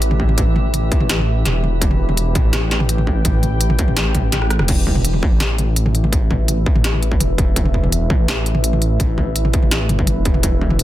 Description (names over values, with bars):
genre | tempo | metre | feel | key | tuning
half-time drum and bass | 167 BPM | 4/4 | half-time | E minor | A4 = 440 Hz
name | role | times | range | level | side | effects
deep dark ambient pad | sustained chords | 0.0-10.8 s | E4 to G5 | -26 LUFS | equal | chorus, built-in reverb, sidechain pumping
dark detuned saw bass | bass | 0.0-10.8 s | E1 to A1 | -18 LUFS | equal | tube saturation
industrial drum kit | drums | 0.0-10.8 s | crash cymbal, hi-hat, rim click, snare drum, toms | -21 LUFS | equal | overdrive
metallic inharmonic drone | texture | 0.0-4.7 s | G4 | -32 LUFS | right 2 dB | chorus, built-in reverb
electronic kick drum | drums | 0.2-10.7 s | none | -18 LUFS | equal | distortion, overdrive
room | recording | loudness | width
little or no reverb | dense, heavily limited modern master | -14 LUFS | side -14 dB against mid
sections
0.0-4.7 A section; 4.7-10.8 A section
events
drop 0.0-4.7, 4.7-10.8; drum fill 4.4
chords
0.0 Em; 4.7 E5